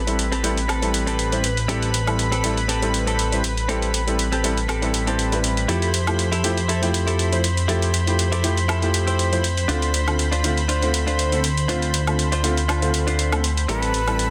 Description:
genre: nu-disco, nu disco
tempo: 120 BPM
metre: 4/4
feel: swing 54% on 16ths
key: A minor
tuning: A4 = 441 Hz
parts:
  - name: lush unison pad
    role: sustained chords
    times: 0.0-14.3 s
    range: A4 to B5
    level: -30 LUFS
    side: equal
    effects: chorus
  - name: fat analog bass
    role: bass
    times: 0.0-14.3 s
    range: A1 to F2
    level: -25 LUFS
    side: equal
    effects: none
  - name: warm baby grand piano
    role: accompaniment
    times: 0.1-14.3 s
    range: D3 to C5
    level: -28 LUFS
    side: equal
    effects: delay
  - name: electronic hi-hat and woodblock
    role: drums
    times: 0.1-14.3 s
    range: none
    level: -29 LUFS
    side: equal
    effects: none
  - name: direct-recorded clean electric guitar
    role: riff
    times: 0.3-14.0 s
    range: C4 to C5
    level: -31 LUFS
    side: equal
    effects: lush chorus, low-pass filter, delay
  - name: breathy bright jazz flute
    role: melody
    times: 13.7-14.3 s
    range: B4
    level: -26 LUFS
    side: equal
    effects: none
room: moderate lush hall reverb, RT60 2.1 s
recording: dense, heavily limited modern master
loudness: -21 LUFS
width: mono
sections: 0.0-14.3 A section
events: none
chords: 0.0 Am7; 5.7 Fmaj9; 9.7 Dm7; 13.7 Am7

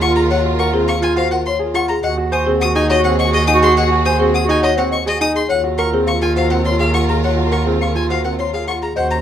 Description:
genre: classical, minimalist pattern music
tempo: 104 BPM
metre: 3/4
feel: straight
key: unclear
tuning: A4 = 438 Hz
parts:
  - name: folk marimba with soft mallets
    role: melody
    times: 0.0-9.1 s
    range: Ab4 to Ab5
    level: -21 LUFS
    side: left 5 dB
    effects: none
  - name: warm studio string section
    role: sustained chords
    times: 0.0-9.2 s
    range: Db4 to Bb4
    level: -25 LUFS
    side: equal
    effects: none
  - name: rich violin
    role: arpeggios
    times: 0.0-9.2 s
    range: Eb5 to Eb6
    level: -21 LUFS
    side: left 3 dB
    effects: none
  - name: warm concert grand piano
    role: arpeggios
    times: 0.0-9.1 s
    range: C4 to C5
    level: -21 LUFS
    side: right 2 dB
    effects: none
  - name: rich double bass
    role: bass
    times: 0.0-9.2 s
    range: Eb2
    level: -20 LUFS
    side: right 2 dB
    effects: none
  - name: dark clarinet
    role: second line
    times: 0.1-9.2 s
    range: F4 to Gb4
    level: -21 LUFS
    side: right 2 dB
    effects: none
room: light reverb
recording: close, detailed microphones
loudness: -14 LUFS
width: side -9 dB against mid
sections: 0.0-9.0 A section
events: none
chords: 0.0 Gbmaj9/Eb; 2.0 Ab7(no3)/Eb; 5.5 Gbmaj9/Eb

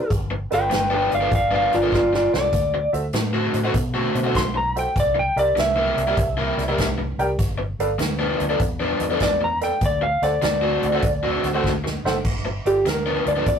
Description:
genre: electric blues shuffle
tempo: 99 BPM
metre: 4/4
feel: swing 67% on 8ths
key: G mixolydian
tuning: A4 = 440 Hz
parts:
  - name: electric slide guitar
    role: melody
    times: 0.0-13.6 s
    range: F4 to C6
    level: -21 LUFS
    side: equal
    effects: none
  - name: vintage muted fingered electric bass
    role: bass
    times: 0.1-13.6 s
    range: F#1 to B2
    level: -28 LUFS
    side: equal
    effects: none
  - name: swinging big-band drum kit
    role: drums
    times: 0.1-13.6 s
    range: crash cymbal, hi-hat, kick drum, snare drum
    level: -26 LUFS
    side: equal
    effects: none
  - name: overdriven electric guitar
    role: riff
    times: 0.3-13.5 s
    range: G2 to F#4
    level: -24 LUFS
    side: left 1 dB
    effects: none
  - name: warm baby grand piano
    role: accompaniment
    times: 0.5-13.5 s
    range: F4 to G5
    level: -26 LUFS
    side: right 2 dB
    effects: none
room: moderate booth ambience, RT60 0.2 s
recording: rough rehearsal-room recording, tube saturation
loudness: -19 LUFS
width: side -7 dB against mid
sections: 0.0-12.2 A section; 12.2-13.6 B section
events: electric slide guitar solo 0.0-12.2; drum fill 1.9-2.5, 11.6-12.2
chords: 0.1 G7; 2.5 D7; 5.0 C7; 7.4 G7; 9.8 D7; 12.2 G7

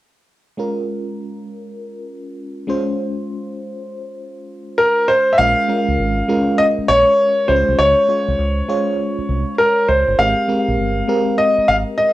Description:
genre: R&B, new jack swing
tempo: 100 BPM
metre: 4/4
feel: swing 65% on 16ths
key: Bb dorian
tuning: A4 = 442 Hz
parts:
  - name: FM electric piano with auto-pan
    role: accompaniment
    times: 0.6-12.1 s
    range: Ab3 to Db5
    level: -21 LUFS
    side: equal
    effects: phaser, cassette tape
  - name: clear grand piano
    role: melody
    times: 4.8-12.1 s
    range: Bb4 to F5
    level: -15 LUFS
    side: equal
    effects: cassette tape
  - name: deep dub fingered electric bass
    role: bass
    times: 5.4-11.8 s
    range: G1 to Db2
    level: -21 LUFS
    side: equal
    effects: none
room: moderate small room reverb, RT60 0.6 s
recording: home recording on cassette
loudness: -14 LUFS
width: side -16 dB against mid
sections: 0.6-5.4 A section; 5.4-12.1 B section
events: none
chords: 0.6 Bbm7; 2.7 Dbmaj7; 5.4 Bbm7; 7.5 Dbmaj7; 10.2 Abmaj9

